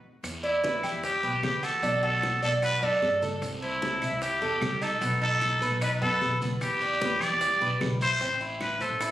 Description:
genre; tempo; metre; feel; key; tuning
latin, Cuban son and guajira; 151 BPM; 4/4; straight; E minor; A4 = 440 Hz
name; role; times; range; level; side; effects
upright bass; bass; 0.2-9.1 s; A1 to E3; -33 LUFS; equal; none
bongos; percussion; 0.2-9.1 s; none; -40 LUFS; left 2 dB; none
claves; percussion; 0.2-9.1 s; none; -42 LUFS; right 2 dB; none
congas; percussion; 0.2-9.1 s; none; -39 LUFS; equal; none
guiro; percussion; 0.2-9.1 s; none; -42 LUFS; right 1 dB; none
maracas; percussion; 0.2-9.1 s; none; -46 LUFS; right 2 dB; none
trumpet with straight mute; melody; 0.4-9.1 s; E4 to D5; -27 LUFS; equal; none
Cuban tres; arpeggios; 0.4-9.1 s; B3 to D5; -31 LUFS; right 2 dB; none
room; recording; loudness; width
moderate large studio reverb, RT60 1.3 s; recorded on a phone in the room, studio reverb, compression; -24 LUFS; side -13 dB against mid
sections
0.2-9.1 A section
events
drum fill 0.0; band accent 0.0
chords
0.2 Em7; 1.8 Bm7; 3.4 Am/C; 5.0 B; 6.6 Em7; 8.2 Am

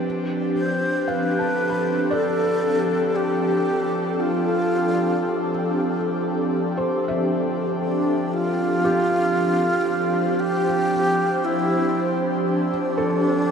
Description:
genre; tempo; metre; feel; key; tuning
ambient; 58 BPM; 4/4; straight; unclear; A4 = 439 Hz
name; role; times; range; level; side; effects
airy breathy pad; sustained chords; 0.0-13.5 s; F3 to C5; -22 LUFS; equal; chorus
felt-muted upright piano; arpeggios; 0.0-13.5 s; G4 to B5; -30 LUFS; equal; ping-pong delay
breathy bright wooden-headed alto flute; melody; 0.6-13.5 s; D4 to C5; -23 LUFS; equal; ping-pong delay
room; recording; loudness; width
wet huge ambient reverb, RT60 8.7 s; dark, warm production; -19 LUFS; side -7 dB against mid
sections
0.0-13.5 A section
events
fade-in on felt piano 0.0-13.5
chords
0.0 F69

